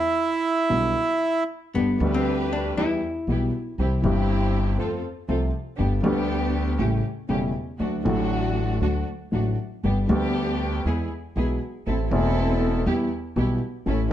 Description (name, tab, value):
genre	tango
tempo	119 BPM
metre	4/4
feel	rubato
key	G major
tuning	A4 = 439 Hz
part	bandoneon	melody	0.0-1.4 s	E4	-21 LUFS	right 3 dB	none
part	dark concert grand piano	accompaniment	0.7-14.1 s	E1 to B4	-24 LUFS	left 2 dB	none
part	upright bass	bass	0.7-14.1 s	E1 to F2	-28 LUFS	right 1 dB	none
part	archtop guitar, miked and amplified	second line	1.7-3.7 s	B3 to E4	-26 LUFS	left 2 dB	none
part	dark chamber string section	stabs	1.8-14.1 s	A3 to B4	-30 LUFS	right 1 dB	none
room	light reverb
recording	dark, warm production, nothing above 10.6 kHz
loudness	-22 LUFS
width	side -11 dB against mid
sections	0.0-1.8 A section; 1.8-14.1 B section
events	none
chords	0.0 Em7; 1.8 G; 2.8 Em; 3.8 C; 4.8 F; 5.8 G; 6.8 A7; 7.8 D; 9.8 G; 10.9 E; 11.9 Am; 12.9 Em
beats	0.19 0.71 1.23 | 1.75 2.26 2.77 3.28 | 3.79 4.29 4.79 5.29 | 5.79 6.29 6.79 7.29 | 7.80 8.30 8.81 9.32 | 9.84 10.35 10.85 11.36 | 11.86 12.37 12.87 13.37 | 13.87